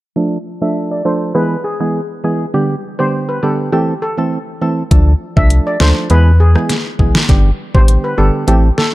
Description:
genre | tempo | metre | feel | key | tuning
dancehall | 101 BPM | 4/4 | straight | unclear | A4 = 440 Hz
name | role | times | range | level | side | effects
percussive organ stab | accompaniment | 0.2-8.7 s | D3 to A4 | -16 LUFS | right 2 dB | chorus, sidechain pumping, low-pass filter
steel pan | melody | 0.6-8.9 s | G4 to E5 | -20 LUFS | left 1 dB | low-pass filter, ping-pong delay
sub bass with octave | bass | 4.9-8.7 s | G1 to E2 | -10 LUFS | equal | none
pop drum kit | drums | 4.9-8.9 s | hi-hat, kick drum, rim click, snare drum | -12 LUFS | equal | overdrive
room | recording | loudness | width
little or no reverb | dark, warm production | -11 LUFS | side -17 dB against mid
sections
0.2-4.9 A section; 4.9-8.9 B section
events
filter sweep 0.2-4.9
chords
0.2 Dm; 1.4 E; 2.5 G; 3.7 Am; 4.9 Dm; 6.1 E; 7.3 G

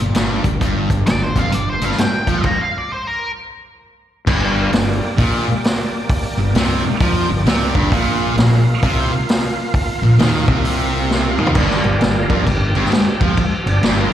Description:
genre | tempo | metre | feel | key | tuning
blues rock power trio and southern rock | 132 BPM | 4/4 | swing 63% on 8ths | G minor | A4 = 440 Hz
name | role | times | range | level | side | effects
overdriven tonewheel organ | sustained chords | 0.0-14.1 s | G3 to F5 | -25 LUFS | right 3 dB | slow rotary speaker, chorus vibrato
thick fuzz guitar | riff | 0.0-14.1 s | F2 to F3 | -18 LUFS | equal | distortion, slapback echo
fuzz fingered electric bass | bass | 0.0-14.1 s | F1 to F2 | -21 LUFS | equal | overdrive
vintage drum kit | drums | 0.1-14.0 s | crash cymbal, hi-hat, kick drum, snare drum, toms | -19 LUFS | equal | none
octave-fuzz lead guitar | melody | 1.1-3.3 s | Bb4 to Bb5 | -22 LUFS | equal | wah, distortion, slapback echo
room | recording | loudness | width
light reverb, studio ambience | live gig heard through the venue's PA, recital hall reverb | -14 LUFS | side -11 dB against mid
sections
0.0-4.3 A section; 4.3-11.6 B section; 11.6-14.1 C section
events
stop 2.4-4.3; drum fill 11.1-11.6; tonewheel organ solo 11.6-14.1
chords
0.0 Gm; 7.9 Bb5; 11.6 Gm

